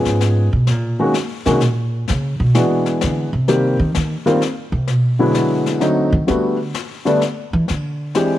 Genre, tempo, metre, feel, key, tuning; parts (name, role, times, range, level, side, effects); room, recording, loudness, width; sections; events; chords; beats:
jazz piano trio; 128 BPM; 3/4; swing 67% on 8ths; A4 = 440 Hz
warm concert grand piano; melody; 0.0-8.4 s; D3 to Ab4; -17 LUFS; left 1 dB
upright bass; bass; 0.0-8.1 s; Ab2 to E3; -18 LUFS; right 1 dB
snare drum and brushed snare drum; drums; 0.1-8.4 s; -28 LUFS; left 8 dB
small room ambience; 1960s-style stereo; -15 LUFS; side -13 dB against mid
0.0-6.3 A section; 6.3-8.4 A section
upright bass solo 0.0-8.4
0.0 Db7; 0.7 N.C.; 2.1 E9; 3.5 Eb6; 4.9 E9; 5.8 D7b9; 6.3 Gadd9; 7.7 E7alt
0.20 | 0.67 1.14 1.61 | 2.08 2.54 3.01 | 3.48 3.94 4.41 | 4.88 5.34 5.81 | 6.28 6.75 7.21 | 7.68 8.15